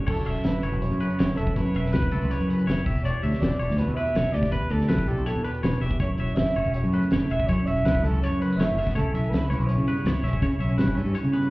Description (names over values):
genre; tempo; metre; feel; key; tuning
math rock and midwest emo; 162 BPM; 4/4; straight; unclear; A4 = 438 Hz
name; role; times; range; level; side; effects
twelve-string electric guitar; accompaniment; 0.0-11.5 s; E2 to G4; -30 LUFS; right 2 dB; analog chorus, plate reverb
twangy electric guitar; arpeggios; 0.0-11.5 s; A4 to E5; -35 LUFS; left 2 dB; plate reverb, tape echo
growling fingered electric bass; bass; 0.0-11.5 s; E1 to C#3; -25 LUFS; equal; overdrive
breathy trumpet; melody; 0.1-11.5 s; G4 to E5; -31 LUFS; right 2 dB; plate reverb, tape echo
loose indie drum kit; drums; 0.1-11.5 s; crash cymbal, hi-hat, kick drum, snare drum; -27 LUFS; equal; none
room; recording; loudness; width
moderate studio reverb, RT60 0.6 s; heard muffled through a wall, club reverb, EQ; -22 LUFS; side -20 dB against mid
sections
0.1-11.5 A section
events
none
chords
0.1 F#7sus4; 2.9 Em7; 6.0 F#m7; 9.0 C#m7b5